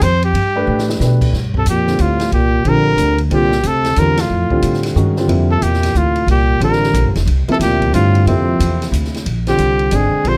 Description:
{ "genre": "modal jazz", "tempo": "182 BPM", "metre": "3/4", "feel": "swing 64% on 8ths", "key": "C mixolydian", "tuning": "A4 = 440 Hz", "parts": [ { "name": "warm trumpet", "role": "melody", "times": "0.0-10.4 s", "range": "C4 to C5", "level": "-20 LUFS", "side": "equal", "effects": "none" }, { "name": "upright bass", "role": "bass", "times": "0.0-10.4 s", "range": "F1 to B2", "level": "-18 LUFS", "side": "equal", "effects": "none" }, { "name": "open jazz drum kit", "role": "drums", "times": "0.0-10.3 s", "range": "crash cymbal, hi-hat, kick drum, ride cymbal, snare drum", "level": "-29 LUFS", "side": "equal", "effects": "none" }, { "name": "warm grand piano", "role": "accompaniment", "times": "0.6-10.4 s", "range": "C3 to B4", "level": "-21 LUFS", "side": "equal", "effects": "none" }, { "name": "breathy trombone", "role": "second line", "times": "1.6-8.9 s", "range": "F2 to D3", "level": "-23 LUFS", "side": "equal", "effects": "none" } ], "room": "light reverb", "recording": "close, detailed microphones", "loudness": "-15 LUFS", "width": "mono", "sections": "0.0-1.3 A section; 1.3-9.3 B section; 9.3-10.4 C section", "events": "drum fill 0.7-1.0; band accent 4.1; trumpet solo 9.3-10.4", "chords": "0.3 G; 1.3 C13sus4; 9.3 Bb9" }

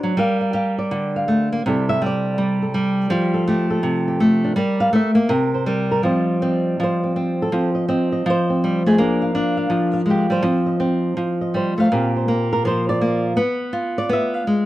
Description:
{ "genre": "solo jazz", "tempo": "164 BPM", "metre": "4/4", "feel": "swing 64% on 8ths, rubato", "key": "F mixolydian", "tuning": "A4 = 440 Hz", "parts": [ { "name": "flamenco guitar", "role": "solo", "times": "0.0-14.7 s", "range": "Bb2 to F5", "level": "-17 LUFS", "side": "equal", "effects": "none" } ], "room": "light reverb", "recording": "dark, warm production", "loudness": "-17 LUFS", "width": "side -15 dB against mid", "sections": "0.0-6.1 A section; 6.1-14.7 A section", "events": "nylon-string guitar solo 0.0-6.1, 6.1-14.7", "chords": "0.2 Gm7; 1.7 C69; 3.1 Fadd9; 4.6 Gm; 5.3 C5; 6.1 F9; 9.0 Bb6; 10.4 F7sus2; 11.9 Bb69; 13.4 G13b9 (rootless)" }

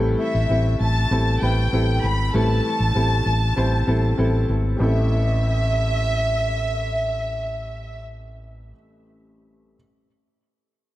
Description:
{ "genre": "pop", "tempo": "98 BPM", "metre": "4/4", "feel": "straight", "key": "A minor", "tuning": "A4 = 440 Hz", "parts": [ { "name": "clear upright piano", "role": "accompaniment", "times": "0.0-9.8 s", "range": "A1 to C5", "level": "-25 LUFS", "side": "left 1 dB", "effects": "analog delay" }, { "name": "hollow-body short-scale fingered electric bass", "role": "bass", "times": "0.0-8.7 s", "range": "G#1 to A1", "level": "-21 LUFS", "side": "equal", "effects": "none" }, { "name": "warm studio violin section", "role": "melody", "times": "0.2-8.0 s", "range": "E5 to B5", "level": "-25 LUFS", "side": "equal", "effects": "analog delay" } ], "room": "light reverb, small room reverb", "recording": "echo-heavy mix", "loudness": "-18 LUFS", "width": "side -15 dB against mid", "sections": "0.0-4.8 A section; 4.8-7.2 B section", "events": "none", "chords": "0.0 Am7" }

